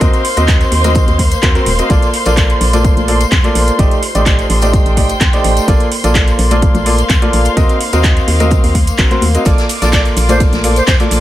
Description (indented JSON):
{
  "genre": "piano house",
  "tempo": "127 BPM",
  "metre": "4/4",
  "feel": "straight",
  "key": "Bb major",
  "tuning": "A4 = 440 Hz",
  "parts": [
    { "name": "dark symphonic violin section", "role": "sustained chords", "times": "0.0-11.2 s", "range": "C5 to D6", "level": "-21 LUFS", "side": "equal", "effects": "sidechain pumping" },
    { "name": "clear baby grand piano", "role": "riff", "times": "0.0-11.2 s", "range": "A3 to Eb5", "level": "-17 LUFS", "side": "right 1 dB", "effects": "sidechain pumping, ping-pong delay" },
    { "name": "organ-like FM bass", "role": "bass", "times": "0.0-11.2 s", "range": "Eb1 to F2", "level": "-14 LUFS", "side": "equal", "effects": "tube saturation, sidechain pumping" },
    { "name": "electronic kick drum", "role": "drums", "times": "0.0-11.0 s", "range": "none", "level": "-12 LUFS", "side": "equal", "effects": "none" },
    { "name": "house drum kit", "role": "drums", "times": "0.0-11.2 s", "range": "handclaps, hi-hat, shaker", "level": "-18 LUFS", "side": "right 1 dB", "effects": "none" },
    { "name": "tambourine and congas", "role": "percussion", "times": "0.0-11.1 s", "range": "none", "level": "-24 LUFS", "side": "left 5 dB", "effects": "none" },
    { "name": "warm studio string section", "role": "texture", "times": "0.0-11.2 s", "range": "Bb3 to C6", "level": "-23 LUFS", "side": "left 2 dB", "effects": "sidechain pumping" },
    { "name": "vintage drum kit", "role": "drums", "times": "9.5-11.2 s", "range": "ride cymbal, snare drum", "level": "-25 LUFS", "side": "right 1 dB", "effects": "high-pass filter on cymbals, high-pass filter on snare, high-pass filter on room" },
    { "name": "reedy concert flute", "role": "melody", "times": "9.8-11.0 s", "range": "C5 to D5", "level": "-19 LUFS", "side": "right 1 dB", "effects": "ping-pong delay" }
  ],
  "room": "small room reverb",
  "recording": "none",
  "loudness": "-9 LUFS",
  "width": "side -14 dB against mid",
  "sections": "0.0-11.2 A section",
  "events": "none",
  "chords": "0.0 Ebm6; 1.9 Bbmaj7; 3.8 F13/A; 5.7 Bbmaj7; 7.6 Ebm6; 9.5 Bbmaj7"
}